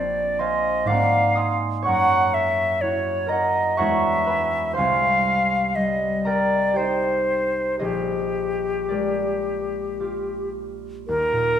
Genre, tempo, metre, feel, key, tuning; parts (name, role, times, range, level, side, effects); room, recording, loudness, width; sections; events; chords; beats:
classical, impressionist duo for flute and harp; 54-65 BPM; 3/4; rubato; A4 = 440 Hz
silver concert flute; melody; 0.0-11.6 s; G4 to Gb5; -22 LUFS; left 2 dB
concert harp; accompaniment; 0.0-11.6 s; Bb1 to Eb6; -24 LUFS; right 2 dB
wet scoring stage reverb, RT60 1.6 s; minimal, uncompressed stereo recording; -20 LUFS; side -9 dB against mid
0.0-11.1 A section
0.0 Bb9; 0.9 Ab9; 1.9 Gb9; 3.8 E9; 4.8 Cmadd9; 7.8 Bb13; 11.1 Ebmaj9
0.88 | 1.87 2.82 3.79 | 4.77 5.77 6.77 | 7.81 8.91 10.00 | 11.08